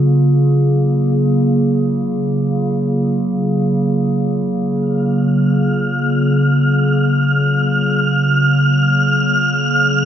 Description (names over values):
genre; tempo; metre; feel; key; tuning
ambient; free time; none; none; F# major; A4 = 445 Hz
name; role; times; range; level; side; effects
warbly tape-like pad; sustained chords; 0.0-10.1 s; C#3 to G#4; -14 LUFS; equal; chorus, built-in reverb
wind-like tuned noise texture; texture; 5.5-10.1 s; E#6; -18 LUFS; right 1 dB; built-in reverb
room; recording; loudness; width
wet plate reverb, RT60 3.4 s; none; -13 LUFS; side -9 dB against mid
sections
0.0-10.1 A section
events
filter sweep on ambient pad 0.0-10.1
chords
0.0 F#maj9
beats
free time